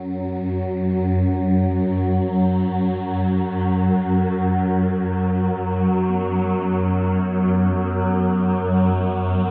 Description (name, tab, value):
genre	dark ambient drone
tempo	free time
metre	none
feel	none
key	unclear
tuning	A4 = 440 Hz
part	swarming drone	drone	0.0-9.5 s	F#2 to F#3	-20 LUFS	equal	built-in reverb
part	bronze singing bowl	arpeggios	6.1-9.5 s	B3	-35 LUFS	equal	none
room	wet huge ambient reverb, RT60 8.5 s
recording	dark, warm production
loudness	-20 LUFS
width	mono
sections	0.0-9.5 A section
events	none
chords	none